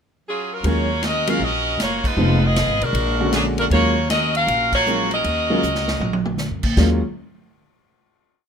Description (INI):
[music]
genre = jazz, big band swing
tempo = 157 BPM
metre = 4/4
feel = swing 65% on 8ths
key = Eb minor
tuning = A4 = 440 Hz
[part]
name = edgy saxophone section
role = melody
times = 0.3-6.4 s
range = Gb3 to F5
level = -20 LUFS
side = equal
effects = none
[part]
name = warm concert grand piano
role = accompaniment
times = 0.6-7.0 s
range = D3 to F#4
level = -22 LUFS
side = equal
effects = none
[part]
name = upright bass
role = bass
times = 0.6-7.0 s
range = F1 to Bb2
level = -22 LUFS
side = equal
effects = none
[part]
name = swinging big-band drum kit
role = drums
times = 0.6-6.9 s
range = crash cymbal, hi-hat, kick drum, ride cymbal, snare drum, toms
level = -26 LUFS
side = right 1 dB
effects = none
[sound]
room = light reverb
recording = minimal, uncompressed stereo recording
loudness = -17 LUFS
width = side -7 dB against mid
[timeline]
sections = 0.0-0.6 pickup bar; 0.6-6.8 A section; 6.8-8.3 final chord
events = band accent 2.0, 4.7; drum fill 5.6-6.4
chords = 0.0 Gbmaj7sus2; 0.6 Ebm11; 2.2 Fm7b5; 2.9 Bb7alt; 3.7 Ebm11